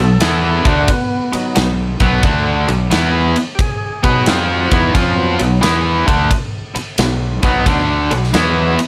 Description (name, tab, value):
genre	blues rock power trio and southern rock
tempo	88 BPM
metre	4/4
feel	swing 66% on 8ths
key	unclear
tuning	A4 = 441 Hz
part	overdriven tonewheel organ	sustained chords	0.0-8.8 s	F#3 to D#5	-25 LUFS	equal	lush chorus
part	overdriven electric guitar	riff	0.0-8.8 s	B2 to B4	-18 LUFS	equal	none
part	fuzz fingered electric bass	bass	0.0-8.8 s	B1 to B2	-21 LUFS	equal	overdrive
part	big rock drum kit	drums	0.2-8.9 s	kick drum, ride cymbal, snare drum	-20 LUFS	equal	none
room	light reverb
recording	none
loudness	-15 LUFS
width	mono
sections	0.0-8.9 A section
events	none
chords	0.0 B